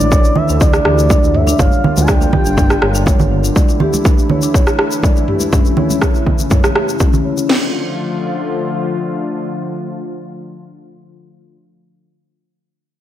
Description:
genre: afro house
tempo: 122 BPM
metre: 4/4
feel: straight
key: D harmonic minor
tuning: A4 = 442 Hz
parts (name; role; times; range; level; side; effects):
- expressive synth lead; melody; 0.0-3.3 s; D5 to A5; -20 LUFS; equal; chorus, vintage 12-bit sampler grit, tape echo
- warm analog pad; sustained chords; 0.0-11.6 s; C#3 to F4; -22 LUFS; left 2 dB; wide subtle chorus, sidechain pumping
- marimba with soft mallets; arpeggios; 0.0-7.7 s; C#4 to D5; -20 LUFS; equal; sidechain pumping, low-pass filter, tape echo
- dark detuned saw bass; bass; 0.0-3.5 s; G1 to D2; -16 LUFS; equal; sidechain pumping
- congas; percussion; 0.0-7.2 s; none; -20 LUFS; right 3 dB; none
- egg shaker; percussion; 0.0-7.5 s; none; -26 LUFS; left 5 dB; none
- house drum kit; drums; 0.1-7.6 s; crash cymbal, kick drum, snare drum; -13 LUFS; equal; overdrive
- afro-pop drum kit; drums; 0.7-6.9 s; rim click, toms; -19 LUFS; right 1 dB; none
room: light reverb, digital ambience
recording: none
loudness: -12 LUFS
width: side -12 dB against mid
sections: 0.0-7.5 A section; 7.5-11.4 B section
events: filter sweep on marimba 0.0-7.5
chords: 0.0 Dsus2; 1.6 Gm7; 3.6 Dsus2; 5.5 A; 7.5 Dm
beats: 0.12 0.61 1.10 | 1.59 2.08 2.57 3.07 | 3.56 4.05 4.54 5.03 | 5.53 6.02 6.51 7.00 | 7.49 7.98 8.48 8.97 | 9.46 9.95 10.44 10.94

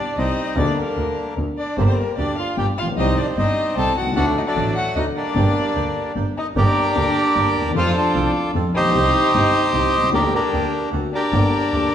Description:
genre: tango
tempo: 151 BPM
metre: 3/4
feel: rubato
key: G minor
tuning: A4 = 440 Hz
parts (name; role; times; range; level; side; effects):
- bandoneon; melody; 0.0-11.9 s; D3 to F5; -20 LUFS; equal; none
- warm violin; second line; 0.0-11.9 s; Bb3 to A5; -25 LUFS; left 3 dB; none
- dark upright piano; accompaniment; 0.2-11.9 s; G1 to A4; -24 LUFS; left 2 dB; none
- clear double bass; bass; 0.2-11.9 s; G1 to F2; -23 LUFS; right 1 dB; none
- bandoneon; stabs; 1.8-11.9 s; A3 to A4; -32 LUFS; right 5 dB; none
room: wet recital hall reverb, RT60 1.6 s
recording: recorded in a church or concert hall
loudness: -17 LUFS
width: side -9 dB against mid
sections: 0.0-6.6 A section; 6.6-11.9 B section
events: none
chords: 0.0 Cm; 0.6 Gm/D; 1.4 N.C.; 1.8 Gm; 3.0 Cm; 4.2 D; 5.4 Gm; 7.8 F; 8.9 Cm; 10.1 Gm/D; 10.9 D; 11.3 Gm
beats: 0.18 | 0.57 0.97 1.38 | 1.78 2.18 2.58 | 2.97 3.37 3.76 | 4.16 4.56 4.96 | 5.36 5.75 6.16 | 6.56 6.96 7.35 | 7.75 8.14 8.54 | 8.94 9.33 9.73 | 10.13 10.53 10.93 | 11.33 11.73

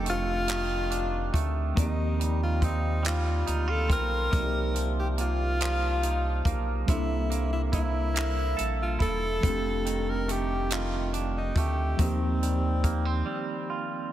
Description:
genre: slow six-eight R&B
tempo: 47 BPM (dotted quarters)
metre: 6/8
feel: straight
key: C dorian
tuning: A4 = 440 Hz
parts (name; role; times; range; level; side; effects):
- breathy tenor saxophone; melody; 0.0-13.7 s; C4 to Bb4; -32 LUFS; left 1 dB; tape echo
- twangy electric guitar; second line; 0.0-14.1 s; F2 to A4; -34 LUFS; right 5 dB; lush chorus
- mellow tine electric piano; accompaniment; 0.0-14.1 s; F3 to D5; -34 LUFS; equal; medium stereo tremolo
- rubbery square bass; bass; 0.0-13.2 s; E1 to Eb2; -29 LUFS; equal; none
- compact cocktail drum kit; drums; 0.1-13.0 s; handclaps, hi-hat, kick drum; -30 LUFS; equal; none
room: light reverb, small room ambience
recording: none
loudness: -25 LUFS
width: side -12 dB against mid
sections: 0.0-14.1 A section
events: break 13.3-14.1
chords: 0.0 F13; 1.8 Cm11; 6.9 C13; 9.4 F13; 12.0 Eb69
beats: 0.50 | 1.77 3.05 | 4.33 5.60 | 6.88 8.16 | 9.43 10.71 | 11.99 13.26

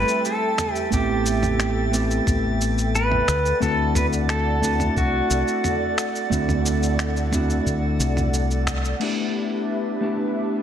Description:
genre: sunset chillout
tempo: 89 BPM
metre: 4/4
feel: straight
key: unclear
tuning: A4 = 439 Hz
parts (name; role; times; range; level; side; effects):
- pedal steel guitar; melody; 0.0-8.3 s; F#4 to B4; -25 LUFS; equal; ping-pong delay
- mellow electric guitar; accompaniment; 0.0-10.6 s; G3 to G4; -25 LUFS; moving between left 7 dB and right 7 dB; auto-pan, ping-pong delay
- airy breathy pad; sustained chords; 0.0-10.6 s; D4 to G5; -30 LUFS; equal; chorus
- deep dub fingered electric bass; bass; 0.0-8.9 s; A1 to D2; -24 LUFS; equal; none
- drifting glass-harmonics texture; texture; 0.0-9.0 s; A6; -34 LUFS; right 5 dB; chorus, built-in reverb
- dusty soul sampler-style drum kit; drums; 0.1-9.1 s; crash cymbal, finger snaps, shaker, toms; -28 LUFS; equal; none
- electronic kick drum; drums; 0.9-8.8 s; none; -27 LUFS; equal; overdrive
room: light reverb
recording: faint mains hum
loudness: -20 LUFS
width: side -9 dB against mid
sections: 0.0-9.0 A section; 9.0-10.6 B section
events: band accent 8.7-9.0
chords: 0.0 Am7; 3.3 D7; 9.0 G6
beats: 0.25 | 0.92 1.60 2.27 2.94 | 3.62 4.29 4.97 5.64 | 6.32 6.99 7.66 8.34 | 9.01 9.69 10.36

